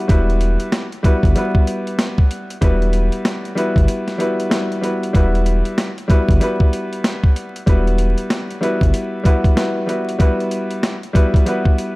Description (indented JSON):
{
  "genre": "hip hop, boom-bap hip-hop",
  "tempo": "95 BPM",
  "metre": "4/4",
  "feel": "swing 62% on 16ths",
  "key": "E minor",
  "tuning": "A4 = 436 Hz",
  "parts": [
    { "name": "bright upright piano", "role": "accompaniment", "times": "0.0-12.0 s", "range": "G3 to B4", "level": "-20 LUFS", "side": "left 1 dB", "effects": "high-pass filter, low-pass filter" },
    { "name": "soft dub sub bass", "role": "bass", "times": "0.1-8.9 s", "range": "E1 to G1", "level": "-17 LUFS", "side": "equal", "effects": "none" },
    { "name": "boom bap sampler-style drum kit", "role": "drums", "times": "0.1-12.0 s", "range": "hi-hat, kick drum, snare drum", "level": "-16 LUFS", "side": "equal", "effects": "none" }
  ],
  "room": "little or no reverb",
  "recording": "dark, warm production, vinyl crackle",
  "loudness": "-15 LUFS",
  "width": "side -22 dB against mid",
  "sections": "0.0-12.0 A section",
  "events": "break 3.9-5.1",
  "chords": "0.0 Emadd9",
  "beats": "| 0.09 0.72 1.36 1.99 | 2.62 3.25 3.88 4.51 | 5.15 5.78 6.41 7.04 | 7.67 8.30 8.94 9.57 | 10.20 10.83 11.46"
}